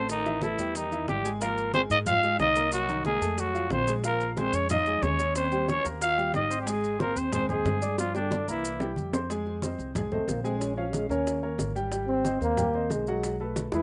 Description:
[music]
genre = Afro-Cuban jazz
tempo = 183 BPM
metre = 4/4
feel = straight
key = F minor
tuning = A4 = 440 Hz
[part]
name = growling trumpet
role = melody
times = 0.0-8.9 s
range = D4 to F5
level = -30 LUFS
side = equal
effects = none
[part]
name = breathy trombone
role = second line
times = 0.0-13.8 s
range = D3 to F4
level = -34 LUFS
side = equal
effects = slapback echo
[part]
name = warm baby grand piano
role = accompaniment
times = 0.0-13.8 s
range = Eb3 to D6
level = -36 LUFS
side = equal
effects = none
[part]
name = upright bass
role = bass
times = 0.0-13.8 s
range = Ab1 to Ab2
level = -37 LUFS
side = equal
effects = none
[part]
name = bongos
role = percussion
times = 0.1-13.8 s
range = none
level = -39 LUFS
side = equal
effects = slapback echo
[part]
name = congas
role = percussion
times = 0.1-13.8 s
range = none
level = -38 LUFS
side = equal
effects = none
[part]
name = maracas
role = percussion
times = 0.1-13.8 s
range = none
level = -43 LUFS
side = equal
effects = none
[sound]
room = little or no reverb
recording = recorded outdoors, with no room sound, nothing above 10.8 kHz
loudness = -28 LUFS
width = mono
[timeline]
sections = 0.0-9.3 A section; 9.3-13.8 B section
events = drum fill 8.0-9.3, 13.6; trombone solo 9.3-13.8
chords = 0.1 A5; 1.4 Ab69; 2.7 Cm7b5; 3.4 F; 4.0 Bbm7; 5.4 Eb13; 6.7 Ab; 8.0 Gm; 8.6 C7; 9.3 Fm7; 10.6 Bbm7; 11.3 Eb7; 11.9 Abmaj7; 13.2 B5

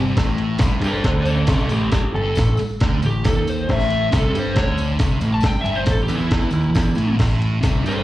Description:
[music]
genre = garage rock duo or trio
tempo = 137 BPM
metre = 4/4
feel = straight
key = unclear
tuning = A4 = 440 Hz
[part]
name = thick fuzz guitar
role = riff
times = 0.0-8.0 s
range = G2 to C4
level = -22 LUFS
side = equal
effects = distortion, slapback echo
[part]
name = growling picked electric bass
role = bass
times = 0.0-8.0 s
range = G1 to G2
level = -22 LUFS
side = equal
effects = overdrive, tube saturation
[part]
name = tambourine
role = percussion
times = 0.1-8.0 s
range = none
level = -41 LUFS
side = left 1 dB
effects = none
[part]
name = breakbeat sampler-style drum kit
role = drums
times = 0.2-8.0 s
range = crash cymbal, kick drum, ride cymbal, snare drum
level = -20 LUFS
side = equal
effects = none
[part]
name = overdriven slide guitar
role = melody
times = 0.9-8.0 s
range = C#4 to A5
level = -24 LUFS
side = left 1 dB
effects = slapback echo, tape echo
[sound]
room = little or no reverb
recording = live gig heard through the venue's PA, cassette tape, club reverb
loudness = -16 LUFS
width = side -15 dB against mid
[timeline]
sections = 0.2-8.0 A section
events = break 0.0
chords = 0.2 A5

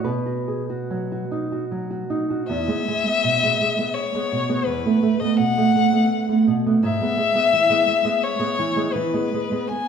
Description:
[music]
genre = romantic duo for violin and classical guitar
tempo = 70-87 BPM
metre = 3/4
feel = rubato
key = E major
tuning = A4 = 440 Hz
[part]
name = nylon-string guitar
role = accompaniment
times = 0.0-9.9 s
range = E2 to B4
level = -21 LUFS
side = right 3 dB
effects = none
[part]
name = dark violin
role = melody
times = 2.5-9.9 s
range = B4 to G#5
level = -21 LUFS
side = left 6 dB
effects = none
[sound]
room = wet recital hall reverb, RT60 1.6 s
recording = recorded in a church or concert hall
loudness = -19 LUFS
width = side -7 dB against mid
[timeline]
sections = 0.0-2.5 A section; 2.5-9.9 B section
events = none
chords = 0.1 B; 2.5 E; 4.7 B5/E; 6.8 E/G#; 8.9 E

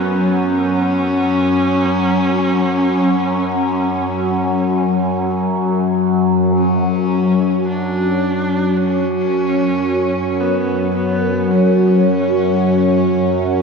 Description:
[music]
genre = dark ambient drone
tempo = free time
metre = none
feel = none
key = unclear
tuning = A4 = 440 Hz
[part]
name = bright horsehead fiddle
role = melody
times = 0.0-13.6 s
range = B3 to D4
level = -20 LUFS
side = left 1 dB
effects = tape echo
[part]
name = overtone-sweeping drone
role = drone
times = 0.0-13.6 s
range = F#2 to F#3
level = -15 LUFS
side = left 1 dB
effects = chorus, built-in reverb, phaser
[part]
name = granular cloud pad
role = sustained chords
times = 9.9-13.6 s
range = F#3 to F#5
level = -27 LUFS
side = equal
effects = none
[sound]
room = wet huge ambient reverb, RT60 7.2 s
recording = worn, warbling old tape, cassette tape, warbly pitch drift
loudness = -14 LUFS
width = side -4 dB against mid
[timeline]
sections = 0.0-6.6 A section; 6.6-13.6 B section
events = fade-in on horsehead fiddle 6.6-13.6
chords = 0.0 N.C.; 6.6 F#5

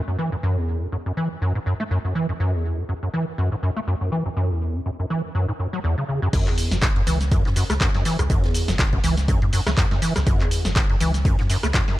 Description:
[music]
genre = acid house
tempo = 122 BPM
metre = 4/4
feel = swing 56% on 16ths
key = unclear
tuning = A4 = 440 Hz
[part]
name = deep acid bass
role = riff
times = 0.1-12.0 s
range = E2 to A3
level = -22 LUFS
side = equal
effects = ensemble chorus, cassette tape, digital delay
[part]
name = warm sub bass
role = bass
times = 6.3-11.7 s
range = F#1 to F#2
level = -24 LUFS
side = equal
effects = sidechain pumping
[part]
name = electronic kick drum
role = drums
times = 6.3-11.9 s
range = none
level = -21 LUFS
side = equal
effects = none
[part]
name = huge arena drum kit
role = drums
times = 6.3-11.9 s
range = hi-hat, snare drum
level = -39 LUFS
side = right 2 dB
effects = none
[part]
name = punchy analog drum machine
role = drums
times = 6.3-12.0 s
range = crash cymbal, handclaps, hi-hat, rim click, shaker, snare drum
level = -26 LUFS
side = equal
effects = none
[sound]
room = little or no reverb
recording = none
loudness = -20 LUFS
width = side -16 dB against mid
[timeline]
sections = 0.0-6.3 A section; 6.3-12.0 B section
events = drop 6.3-12.0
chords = 0.0 N.C.; 6.3 F#5

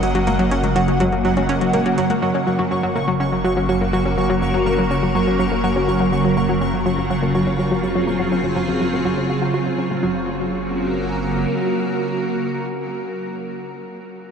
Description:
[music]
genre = ambient, sequencer-driven space music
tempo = 123 BPM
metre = 4/4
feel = straight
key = Gb lydian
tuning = A4 = 440 Hz
[part]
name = evolving wavetable pad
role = sustained chords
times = 0.0-13.6 s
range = C#3 to Eb5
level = -20 LUFS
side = right 1 dB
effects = ensemble chorus, built-in reverb, phaser
[part]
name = analog pluck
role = riff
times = 0.0-10.3 s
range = Gb3 to Gb4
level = -21 LUFS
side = equal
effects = chorus, ping-pong delay
[part]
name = round analog bass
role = bass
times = 0.0-11.5 s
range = Gb1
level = -28 LUFS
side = equal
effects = none
[part]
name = soft vintage rhythm box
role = percussion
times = 0.0-2.2 s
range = hi-hat, toms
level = -32 LUFS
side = equal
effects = ping-pong delay
[part]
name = pulsing gated texture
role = texture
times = 0.0-10.0 s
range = Gb5 to Db6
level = -29 LUFS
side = equal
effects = chorus, built-in reverb
[sound]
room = wet huge ambient reverb, RT60 7.9 s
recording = worn, warbling old tape, cassette tape, warbly pitch drift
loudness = -17 LUFS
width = side -7 dB against mid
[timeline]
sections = 0.0-2.2 A section; 2.2-10.0 B section; 10.0-13.9 C section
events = fade-out on analog synth bass 2.2-10.0; filter sweep on synth arpeggio sound 2.2-10.0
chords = 0.0 Gb

